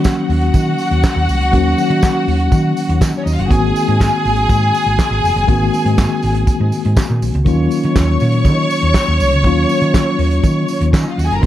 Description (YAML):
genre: disco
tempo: 121 BPM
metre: 4/4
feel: straight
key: Eb dorian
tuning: A4 = 444 Hz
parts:
  - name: clear studio string section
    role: second line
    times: 0.0-11.5 s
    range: Db4 to Db6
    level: -19 LUFS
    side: left 1 dB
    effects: none
  - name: mellow tine electric piano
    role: accompaniment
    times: 0.0-11.5 s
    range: Eb3 to Gb4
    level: -18 LUFS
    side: left 2 dB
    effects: medium stereo tremolo
  - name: hollow-body short-scale fingered electric bass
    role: bass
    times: 0.0-11.5 s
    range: F1 to Eb3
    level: -16 LUFS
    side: equal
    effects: none
  - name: tambourine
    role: percussion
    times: 0.0-11.5 s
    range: none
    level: -35 LUFS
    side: right 5 dB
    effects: none
  - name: warm soul drum kit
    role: drums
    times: 0.1-11.5 s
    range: handclaps, hi-hat, kick drum, snare drum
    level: -17 LUFS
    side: equal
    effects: none
room: studio reverb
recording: dark, warm production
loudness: -12 LUFS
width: side -13 dB against mid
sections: 0.0-11.5 A section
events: none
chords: 0.0 Ebm7; 3.5 Ab9; 7.5 Ebm9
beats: 0.04 0.54 1.03 | 1.53 2.02 2.52 3.01 | 3.50 4.00 4.49 4.99 | 5.48 5.98 6.47 6.97 | 7.46 7.96 8.46 8.95 | 9.45 9.94 10.44 10.94 | 11.43